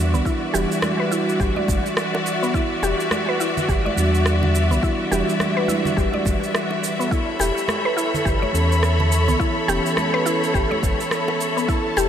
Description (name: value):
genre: organic downtempo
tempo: 105 BPM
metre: 4/4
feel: swing 59% on 16ths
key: E dorian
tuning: A4 = 440 Hz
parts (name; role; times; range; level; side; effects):
- mellow tine electric piano; accompaniment; 0.0-12.1 s; E3 to A4; -26 LUFS; right 2 dB; wide subtle chorus, sidechain pumping, low-pass filter, analog delay
- clear studio string section; sustained chords; 0.0-12.1 s; F#4 to B5; -23 LUFS; left 1 dB; sidechain pumping
- warm sub bass; bass; 0.0-12.1 s; E1 to E2; -21 LUFS; equal; tube saturation, sidechain pumping
- mallet-like synth pluck; arpeggios; 0.1-12.1 s; B3 to D5; -25 LUFS; equal; chorus, analog delay
- electronic cabasa and rim click; drums; 0.1-12.1 s; none; -30 LUFS; right 2 dB; studio reverb
- congas and bongos; percussion; 0.1-12.1 s; none; -32 LUFS; right 2 dB; none
- electronic kick drum; drums; 0.3-11.8 s; none; -23 LUFS; equal; overdrive, studio reverb
room: moderate huge ambient reverb, RT60 8.8 s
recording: dreamy mix soaked in reverb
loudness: -18 LUFS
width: side -9 dB against mid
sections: 0.0-12.1 A section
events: filter sweep on synth pluck 0.0-12.1; filter sweep on tine electric piano 0.0-12.1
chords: 0.0 Em9; 7.1 Aadd9/E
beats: | 0.26 0.83 1.40 1.97 | 2.54 3.11 3.69 4.26 | 4.83 5.40 5.97 6.54 | 7.11 7.68 8.26 8.83 | 9.40 9.97 10.54 11.11 | 11.69